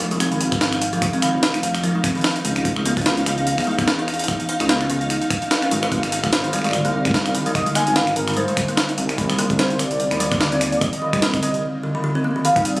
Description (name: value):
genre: IDM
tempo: 147 BPM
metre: 4/4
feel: swing 56% on 16ths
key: unclear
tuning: A4 = 441 Hz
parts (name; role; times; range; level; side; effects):
- kalimba; arpeggios; 0.0-12.6 s; D3 to Cb5; -24 LUFS; equal; digital delay
- dark detuned saw bass; bass; 0.0-12.8 s; F1 to Fb2; -25 LUFS; equal; none
- jungle sampler-style drum kit; drums; 0.0-12.8 s; finger snaps, hi-hat, snare drum; -22 LUFS; equal; overdrive
- pulsing gated texture; texture; 0.0-12.8 s; Eb4 to Eb6; -27 LUFS; equal; chorus, built-in reverb, sidechain pumping
- electronic kick drum; drums; 0.5-12.6 s; none; -25 LUFS; equal; overdrive
- warm velvety synth lead; melody; 6.3-12.8 s; Bb4 to Ab5; -23 LUFS; equal; chorus, cassette tape, digital delay
- icy glass pad; sustained chords; 12.5-12.8 s; G3 to C4; -26 LUFS; equal; chorus, built-in reverb
room: light reverb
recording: recorded on a phone in the room, studio ambience, compression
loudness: -17 LUFS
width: side -21 dB against mid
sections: 0.0-12.4 A section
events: break 11.6-12.4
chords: 0.0 Fm7; 2.7 Dbm7; 5.9 Ab(#11); 9.2 Cmadd9